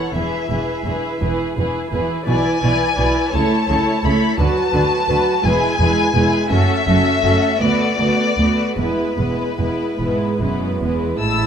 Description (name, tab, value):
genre	classical, slow romantic movement for string orchestra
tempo	49-57 BPM (dotted quarters)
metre	6/8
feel	rubato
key	unclear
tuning	A4 = 440 Hz
part	muted chamber violin section	melody	0.0-11.5 s	B4 to E6	-21 LUFS	left 5 dB	none
part	muted studio violin section	second line	0.0-11.5 s	E4 to A5	-24 LUFS	left 1 dB	none
part	muted studio viola section	accompaniment	0.0-11.5 s	E3 to F#4	-20 LUFS	right 2 dB	none
part	muted studio double bass section	bass	0.1-11.5 s	E1 to D2	-23 LUFS	right 2 dB	none
part	muted studio cello section	bass	0.2-11.5 s	D2 to D3	-23 LUFS	right 2 dB	none
room	light reverb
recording	close, detailed microphones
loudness	-15 LUFS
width	side -8 dB against mid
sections	0.0-11.2 A section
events	none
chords	0.2 E; 2.3 E7; 3.3 A; 4.4 Bm7; 5.5 E; 6.5 F#m7; 7.6 Bm7; 8.8 E